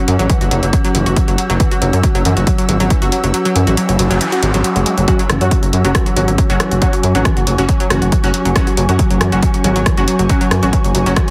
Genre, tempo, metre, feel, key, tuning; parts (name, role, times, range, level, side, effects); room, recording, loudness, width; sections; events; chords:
driving peak-time techno; 138 BPM; 4/4; straight; A4 = 440 Hz
analog pluck; riff; 0.0-11.3 s; E3 to F#4; -22 LUFS; equal; chorus, tube saturation, sidechain pumping, digital delay
metallic inharmonic drone; drone; 0.0-11.3 s; F#3; -26 LUFS; equal; chorus, built-in reverb, sidechain pumping
ethereal airy pad; texture; 0.0-11.3 s; C#4 to E6; -25 LUFS; equal; ensemble chorus, built-in reverb, sidechain pumping
gritty driven synth bass; bass; 0.1-11.1 s; F#1 to F#2; -18 LUFS; equal; tube saturation, sidechain pumping
techno drum kit; drums; 0.1-11.3 s; hi-hat, rim click; -24 LUFS; equal
electronic kick drum; drums; 0.3-11.3 s; -18 LUFS; equal; overdrive
noise sweep; sound effects; 3.8-5.1 s; -27 LUFS; equal
rave stab; stabs; 5.1-11.1 s; F#3 to F#4; -23 LUFS; equal; chorus, built-in reverb, sidechain pumping, tape echo
light reverb; heavily compressed radio sound; -14 LUFS; mono
0.0-11.3 A section
kick drops out 3.3-5.1; noise sweep 3.8-5.1
0.0 F#5